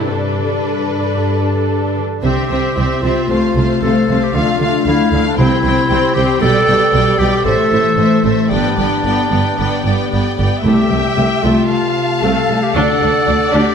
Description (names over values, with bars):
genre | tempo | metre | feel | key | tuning
cinematic, heroic adventure film score | 114 BPM | 4/4 | straight | C major | A4 = 440 Hz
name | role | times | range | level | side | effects
warm symphonic violin section | melody | 0.0-13.7 s | B4 to A5 | -24 LUFS | left 4 dB | none
warm symphonic violin section | second line | 0.0-13.7 s | A4 to F5 | -21 LUFS | left 1 dB | none
rich symphonic viola section | accompaniment | 0.0-13.7 s | G3 to D4 | -19 LUFS | equal | none
concert harp | arpeggios | 0.0-13.7 s | G2 to A4 | -21 LUFS | left 7 dB | none
warm studio cello section | bass | 0.0-13.6 s | C2 to D3 | -20 LUFS | right 2 dB | none
bright clarinet | second line | 2.2-13.7 s | D4 to A4 | -17 LUFS | equal | none
clear symphonic double bass section | bass | 2.2-13.6 s | G1 to D2 | -21 LUFS | right 4 dB | none
timpani | percussion | 5.4-6.1, 10.7-11.4 s | C3 | -24 LUFS | left 2 dB | none
room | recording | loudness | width
wet scoring stage reverb, RT60 1.7 s | none | -12 LUFS | side -7 dB against mid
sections
0.0-2.2 A section; 2.2-13.7 B section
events
build-up 0.0-2.2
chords
0.1 Gadd9; 2.2 C; 3.3 F/C; 4.3 Dm; 5.4 C; 6.4 G/B; 7.5 Am; 8.5 G; 10.7 C6; 11.7 F/C; 12.7 D